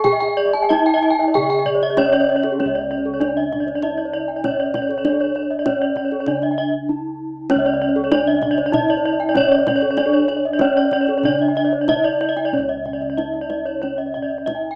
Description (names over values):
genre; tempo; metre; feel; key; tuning
Balinese gamelan; 96 BPM; 4/4; straight; C# pelog; A4 = 440 Hz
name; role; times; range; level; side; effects
gamelan-type bronze metallophone; melody; 0.0-14.8 s; C#4 to G#4-45c; -23 LUFS; equal; none
gamelan-type bronze metallophone; arpeggios; 0.0-14.8 s; C#5 to A5-40c; -22 LUFS; equal; none
gamelan-type bronze metallophone; arpeggios; 0.0-14.7 s; G#4-45c to A5-40c; -30 LUFS; equal; tape echo
gamelan-type bossed gongs; bass; 0.0-14.8 s; C#2 to G#4-45c; -31 LUFS; equal; none
kendang; percussion; 0.0-14.6 s; none; -32 LUFS; equal; none
room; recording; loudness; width
wet studio reverb, RT60 0.6 s; rough home demo mix, small speaker sound; -19 LUFS; mono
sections
0.0-2.6 A section; 2.6-12.5 B section; 12.5-14.8 C section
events
break 6.6-7.5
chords
none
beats
| 0.05 0.71 1.35 1.98 | 2.60 3.21 3.83 4.44 | 5.05 5.66 6.28 6.89 | 7.50 8.12 8.73 9.36 | 9.98 10.62 11.25 11.89 | 12.53 13.18 13.82 14.47